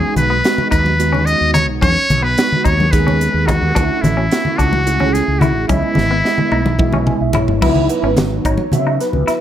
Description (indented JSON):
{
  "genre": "electric jazz fusion",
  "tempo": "217 BPM (eighths)",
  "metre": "7/8",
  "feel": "straight",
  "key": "C# minor",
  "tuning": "A4 = 439 Hz",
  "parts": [
    { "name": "trumpet with metal mute", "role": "melody", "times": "0.0-7.3 s", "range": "E4 to D#5", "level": "-17 LUFS", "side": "left 1 dB", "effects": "slapback echo" },
    { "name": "overdriven tine electric piano", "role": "accompaniment", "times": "0.0-9.4 s", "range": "F#3 to G#5", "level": "-20 LUFS", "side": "right 3 dB", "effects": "ensemble chorus" },
    { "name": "clean electric guitar", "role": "stabs", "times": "0.0-9.4 s", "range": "B3 to E4", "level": "-23 LUFS", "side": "left 3 dB", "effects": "wide subtle chorus, slapback echo" },
    { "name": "mellow fretless electric bass", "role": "bass", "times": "0.2-9.3 s", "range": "G#1 to C#3", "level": "-18 LUFS", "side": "equal", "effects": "analog chorus" },
    { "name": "crisp fusion drum kit", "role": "drums", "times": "0.2-9.4 s", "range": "crash cymbal, hi-hat, kick drum, snare drum, toms", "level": "-20 LUFS", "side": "equal", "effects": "none" },
    { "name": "congas", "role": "percussion", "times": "0.2-9.3 s", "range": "none", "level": "-20 LUFS", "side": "left 1 dB", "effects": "none" }
  ],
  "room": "light reverb",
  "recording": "none",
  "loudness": "-12 LUFS",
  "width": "side -10 dB against mid",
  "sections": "0.0-7.6 A section; 7.6-9.4 B section",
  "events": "drum fill 6.0-7.6; tine electric piano fill 6.8-7.6",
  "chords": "0.0 Emaj7 (rootless); 3.8 Dmaj7; 5.7 C#m9; 7.6 C#m11",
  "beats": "0.16 0.44 0.72 0.99 1.27 1.55 | 1.82 2.10 2.38 2.65 2.93 3.20 3.48 | 3.76 4.03 4.31 4.59 4.86 5.14 5.41 | 5.69 5.97 6.24 6.52 6.79 7.07 7.35 | 7.62 7.90 8.18 8.45 8.73 9.00 9.28"
}